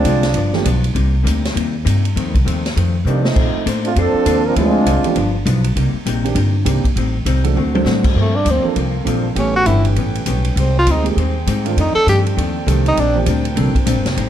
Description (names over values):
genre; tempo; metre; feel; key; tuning
jazz, big band swing; 200 BPM; 4/4; swing 62% on 8ths; G minor; A4 = 441 Hz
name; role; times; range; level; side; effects
clear trombone section; second line; 0.0-0.7, 3.1-5.4 s; Eb3 to Bb4; -17 LUFS; right 2 dB; none
upright bass; bass; 0.0-14.3 s; F1 to C3; -17 LUFS; equal; none
swinging big-band drum kit; drums; 0.0-14.3 s; crash cymbal, hi-hat, kick drum, ride cymbal, snare drum, toms; -23 LUFS; equal; none
hollow-body jazz guitar; accompaniment; 0.1-14.3 s; F2 to C5; -23 LUFS; left 6 dB; none
warm grand piano; accompaniment; 0.5-0.6, 4.6-13.7 s; Eb3 to C5; -22 LUFS; right 8 dB; none
mellow saxophone section; sustained chords; 8.1-14.3 s; C4 to G5; -28 LUFS; right 1 dB; none
clear tenor saxophone; melody; 8.2-13.2 s; A3 to A4; -17 LUFS; right 1 dB; none
room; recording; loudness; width
light reverb; dark, warm production; -14 LUFS; side -10 dB against mid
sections
0.0-8.2 A section; 8.2-14.3 B section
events
trombone section solo 0.0-8.2; drum fill 3.1-3.4, 7.6; tenor saxophone solo 8.2-14.3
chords
0.4 G7; 1.0 Cm7; 2.2 F7; 3.4 Bbmaj9; 4.6 Dm7b5; 5.2 G7; 5.8 Cm7; 7.0 Am7b5; 7.6 D7; 8.2 Gm11; 9.4 A9; 10.6 Abmaj7; 11.8 F13; 13.0 Bb69